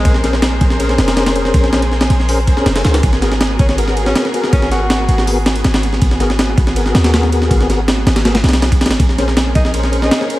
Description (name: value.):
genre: drum and bass, jungle.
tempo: 161 BPM.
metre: 4/4.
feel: straight.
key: unclear.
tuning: A4 = 440 Hz.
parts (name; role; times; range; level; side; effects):
breathy tenor saxophone; melody; 0.0-0.1, 3.6-5.2, 9.6-10.2 s; Ab3 to Gb4; -25 LUFS; equal; dub echo.
warm studio string section; sustained chords; 0.0-10.4 s; Cb4 to C5; -23 LUFS; equal; none.
warm 808-style bass; bass; 0.0-10.1 s; F1 to Eb2; -16 LUFS; equal; none.
breakbeat sampler-style drum kit; drums; 0.1-10.4 s; hi-hat, kick drum, ride cymbal, snare drum; -14 LUFS; equal; none.
tonewheel organ; stabs; 0.2-10.4 s; Cb4 to C5; -20 LUFS; left 2 dB; chorus vibrato, slow rotary speaker, dub echo.
backwards swelling texture; texture; 9.8-10.4 s; Db5 to Db7; -40 LUFS; equal; none.
room: little or no reverb.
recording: vinyl crackle.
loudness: -11 LUFS.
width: side -17 dB against mid.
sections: 0.0-10.4 A section.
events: none.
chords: 0.0 Bbm9; 3.0 Abm9; 9.0 Bbm9.